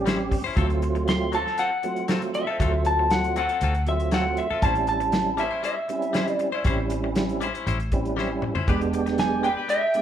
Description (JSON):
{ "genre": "straight-eighth soul blues", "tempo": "118 BPM", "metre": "4/4", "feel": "straight", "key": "unclear", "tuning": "A4 = 440 Hz", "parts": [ { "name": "tonewheel organ", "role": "accompaniment", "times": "0.0-10.0 s", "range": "F#3 to G4", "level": "-27 LUFS", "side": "right 4 dB", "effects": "overdrive, chorus vibrato, slow rotary speaker" }, { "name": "vintage muted fingered electric bass", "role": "bass", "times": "0.0-9.5 s", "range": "E1 to D2", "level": "-28 LUFS", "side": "equal", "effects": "none" }, { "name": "direct-recorded clean electric guitar", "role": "stabs", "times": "0.1-10.0 s", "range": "F#3 to B#4", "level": "-31 LUFS", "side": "left 6 dB", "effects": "none" }, { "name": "warm soul drum kit", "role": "drums", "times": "0.1-10.0 s", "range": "hi-hat, kick drum, snare drum, toms", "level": "-27 LUFS", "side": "equal", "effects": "none" }, { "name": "electric guitar through a small old amp", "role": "melody", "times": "1.1-10.0 s", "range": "E5 to C6", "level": "-24 LUFS", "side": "equal", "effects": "phaser" }, { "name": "mellow horn section", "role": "sustained chords", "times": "8.7-10.0 s", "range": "D5 to G5", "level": "-35 LUFS", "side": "left 3 dB", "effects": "none" } ], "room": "moderate large studio reverb, RT60 0.9 s", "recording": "band playing live in one room", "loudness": "-22 LUFS", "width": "side -10 dB against mid", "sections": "0.0-10.0 A section", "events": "drum fill 8.2-8.7", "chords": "0.0 A7#9; 0.6 D7#9; 4.6 A7#9; 8.7 E7#9" }